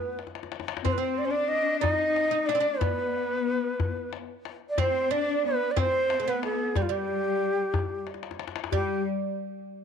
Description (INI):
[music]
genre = Persian modal ensemble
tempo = 61 BPM (dotted quarters)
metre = 6/8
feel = straight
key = G dastgah homayun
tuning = A4 = 439 Hz
[part]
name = breathy bright ney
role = melody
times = 0.0-9.0 s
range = F4 to Eb5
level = -27 LUFS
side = equal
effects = none
[part]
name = oud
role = second line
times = 0.0-9.0 s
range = G3 to Eb4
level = -33 LUFS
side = right 12 dB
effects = none
[part]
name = tombak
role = percussion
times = 0.2-9.0 s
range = none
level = -31 LUFS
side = left 3 dB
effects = none
[part]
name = clear studio cello section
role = second line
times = 0.8-9.0 s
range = G3 to Eb4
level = -33 LUFS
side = left 11 dB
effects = none
[sound]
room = light reverb, small room ambience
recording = 1960s-style stereo with parts hard left and right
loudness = -25 LUFS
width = side -7 dB against mid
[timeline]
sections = 0.0-8.7 A section; 8.7-9.8 B section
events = drum fill 0.2-0.8, 8.1-8.7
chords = none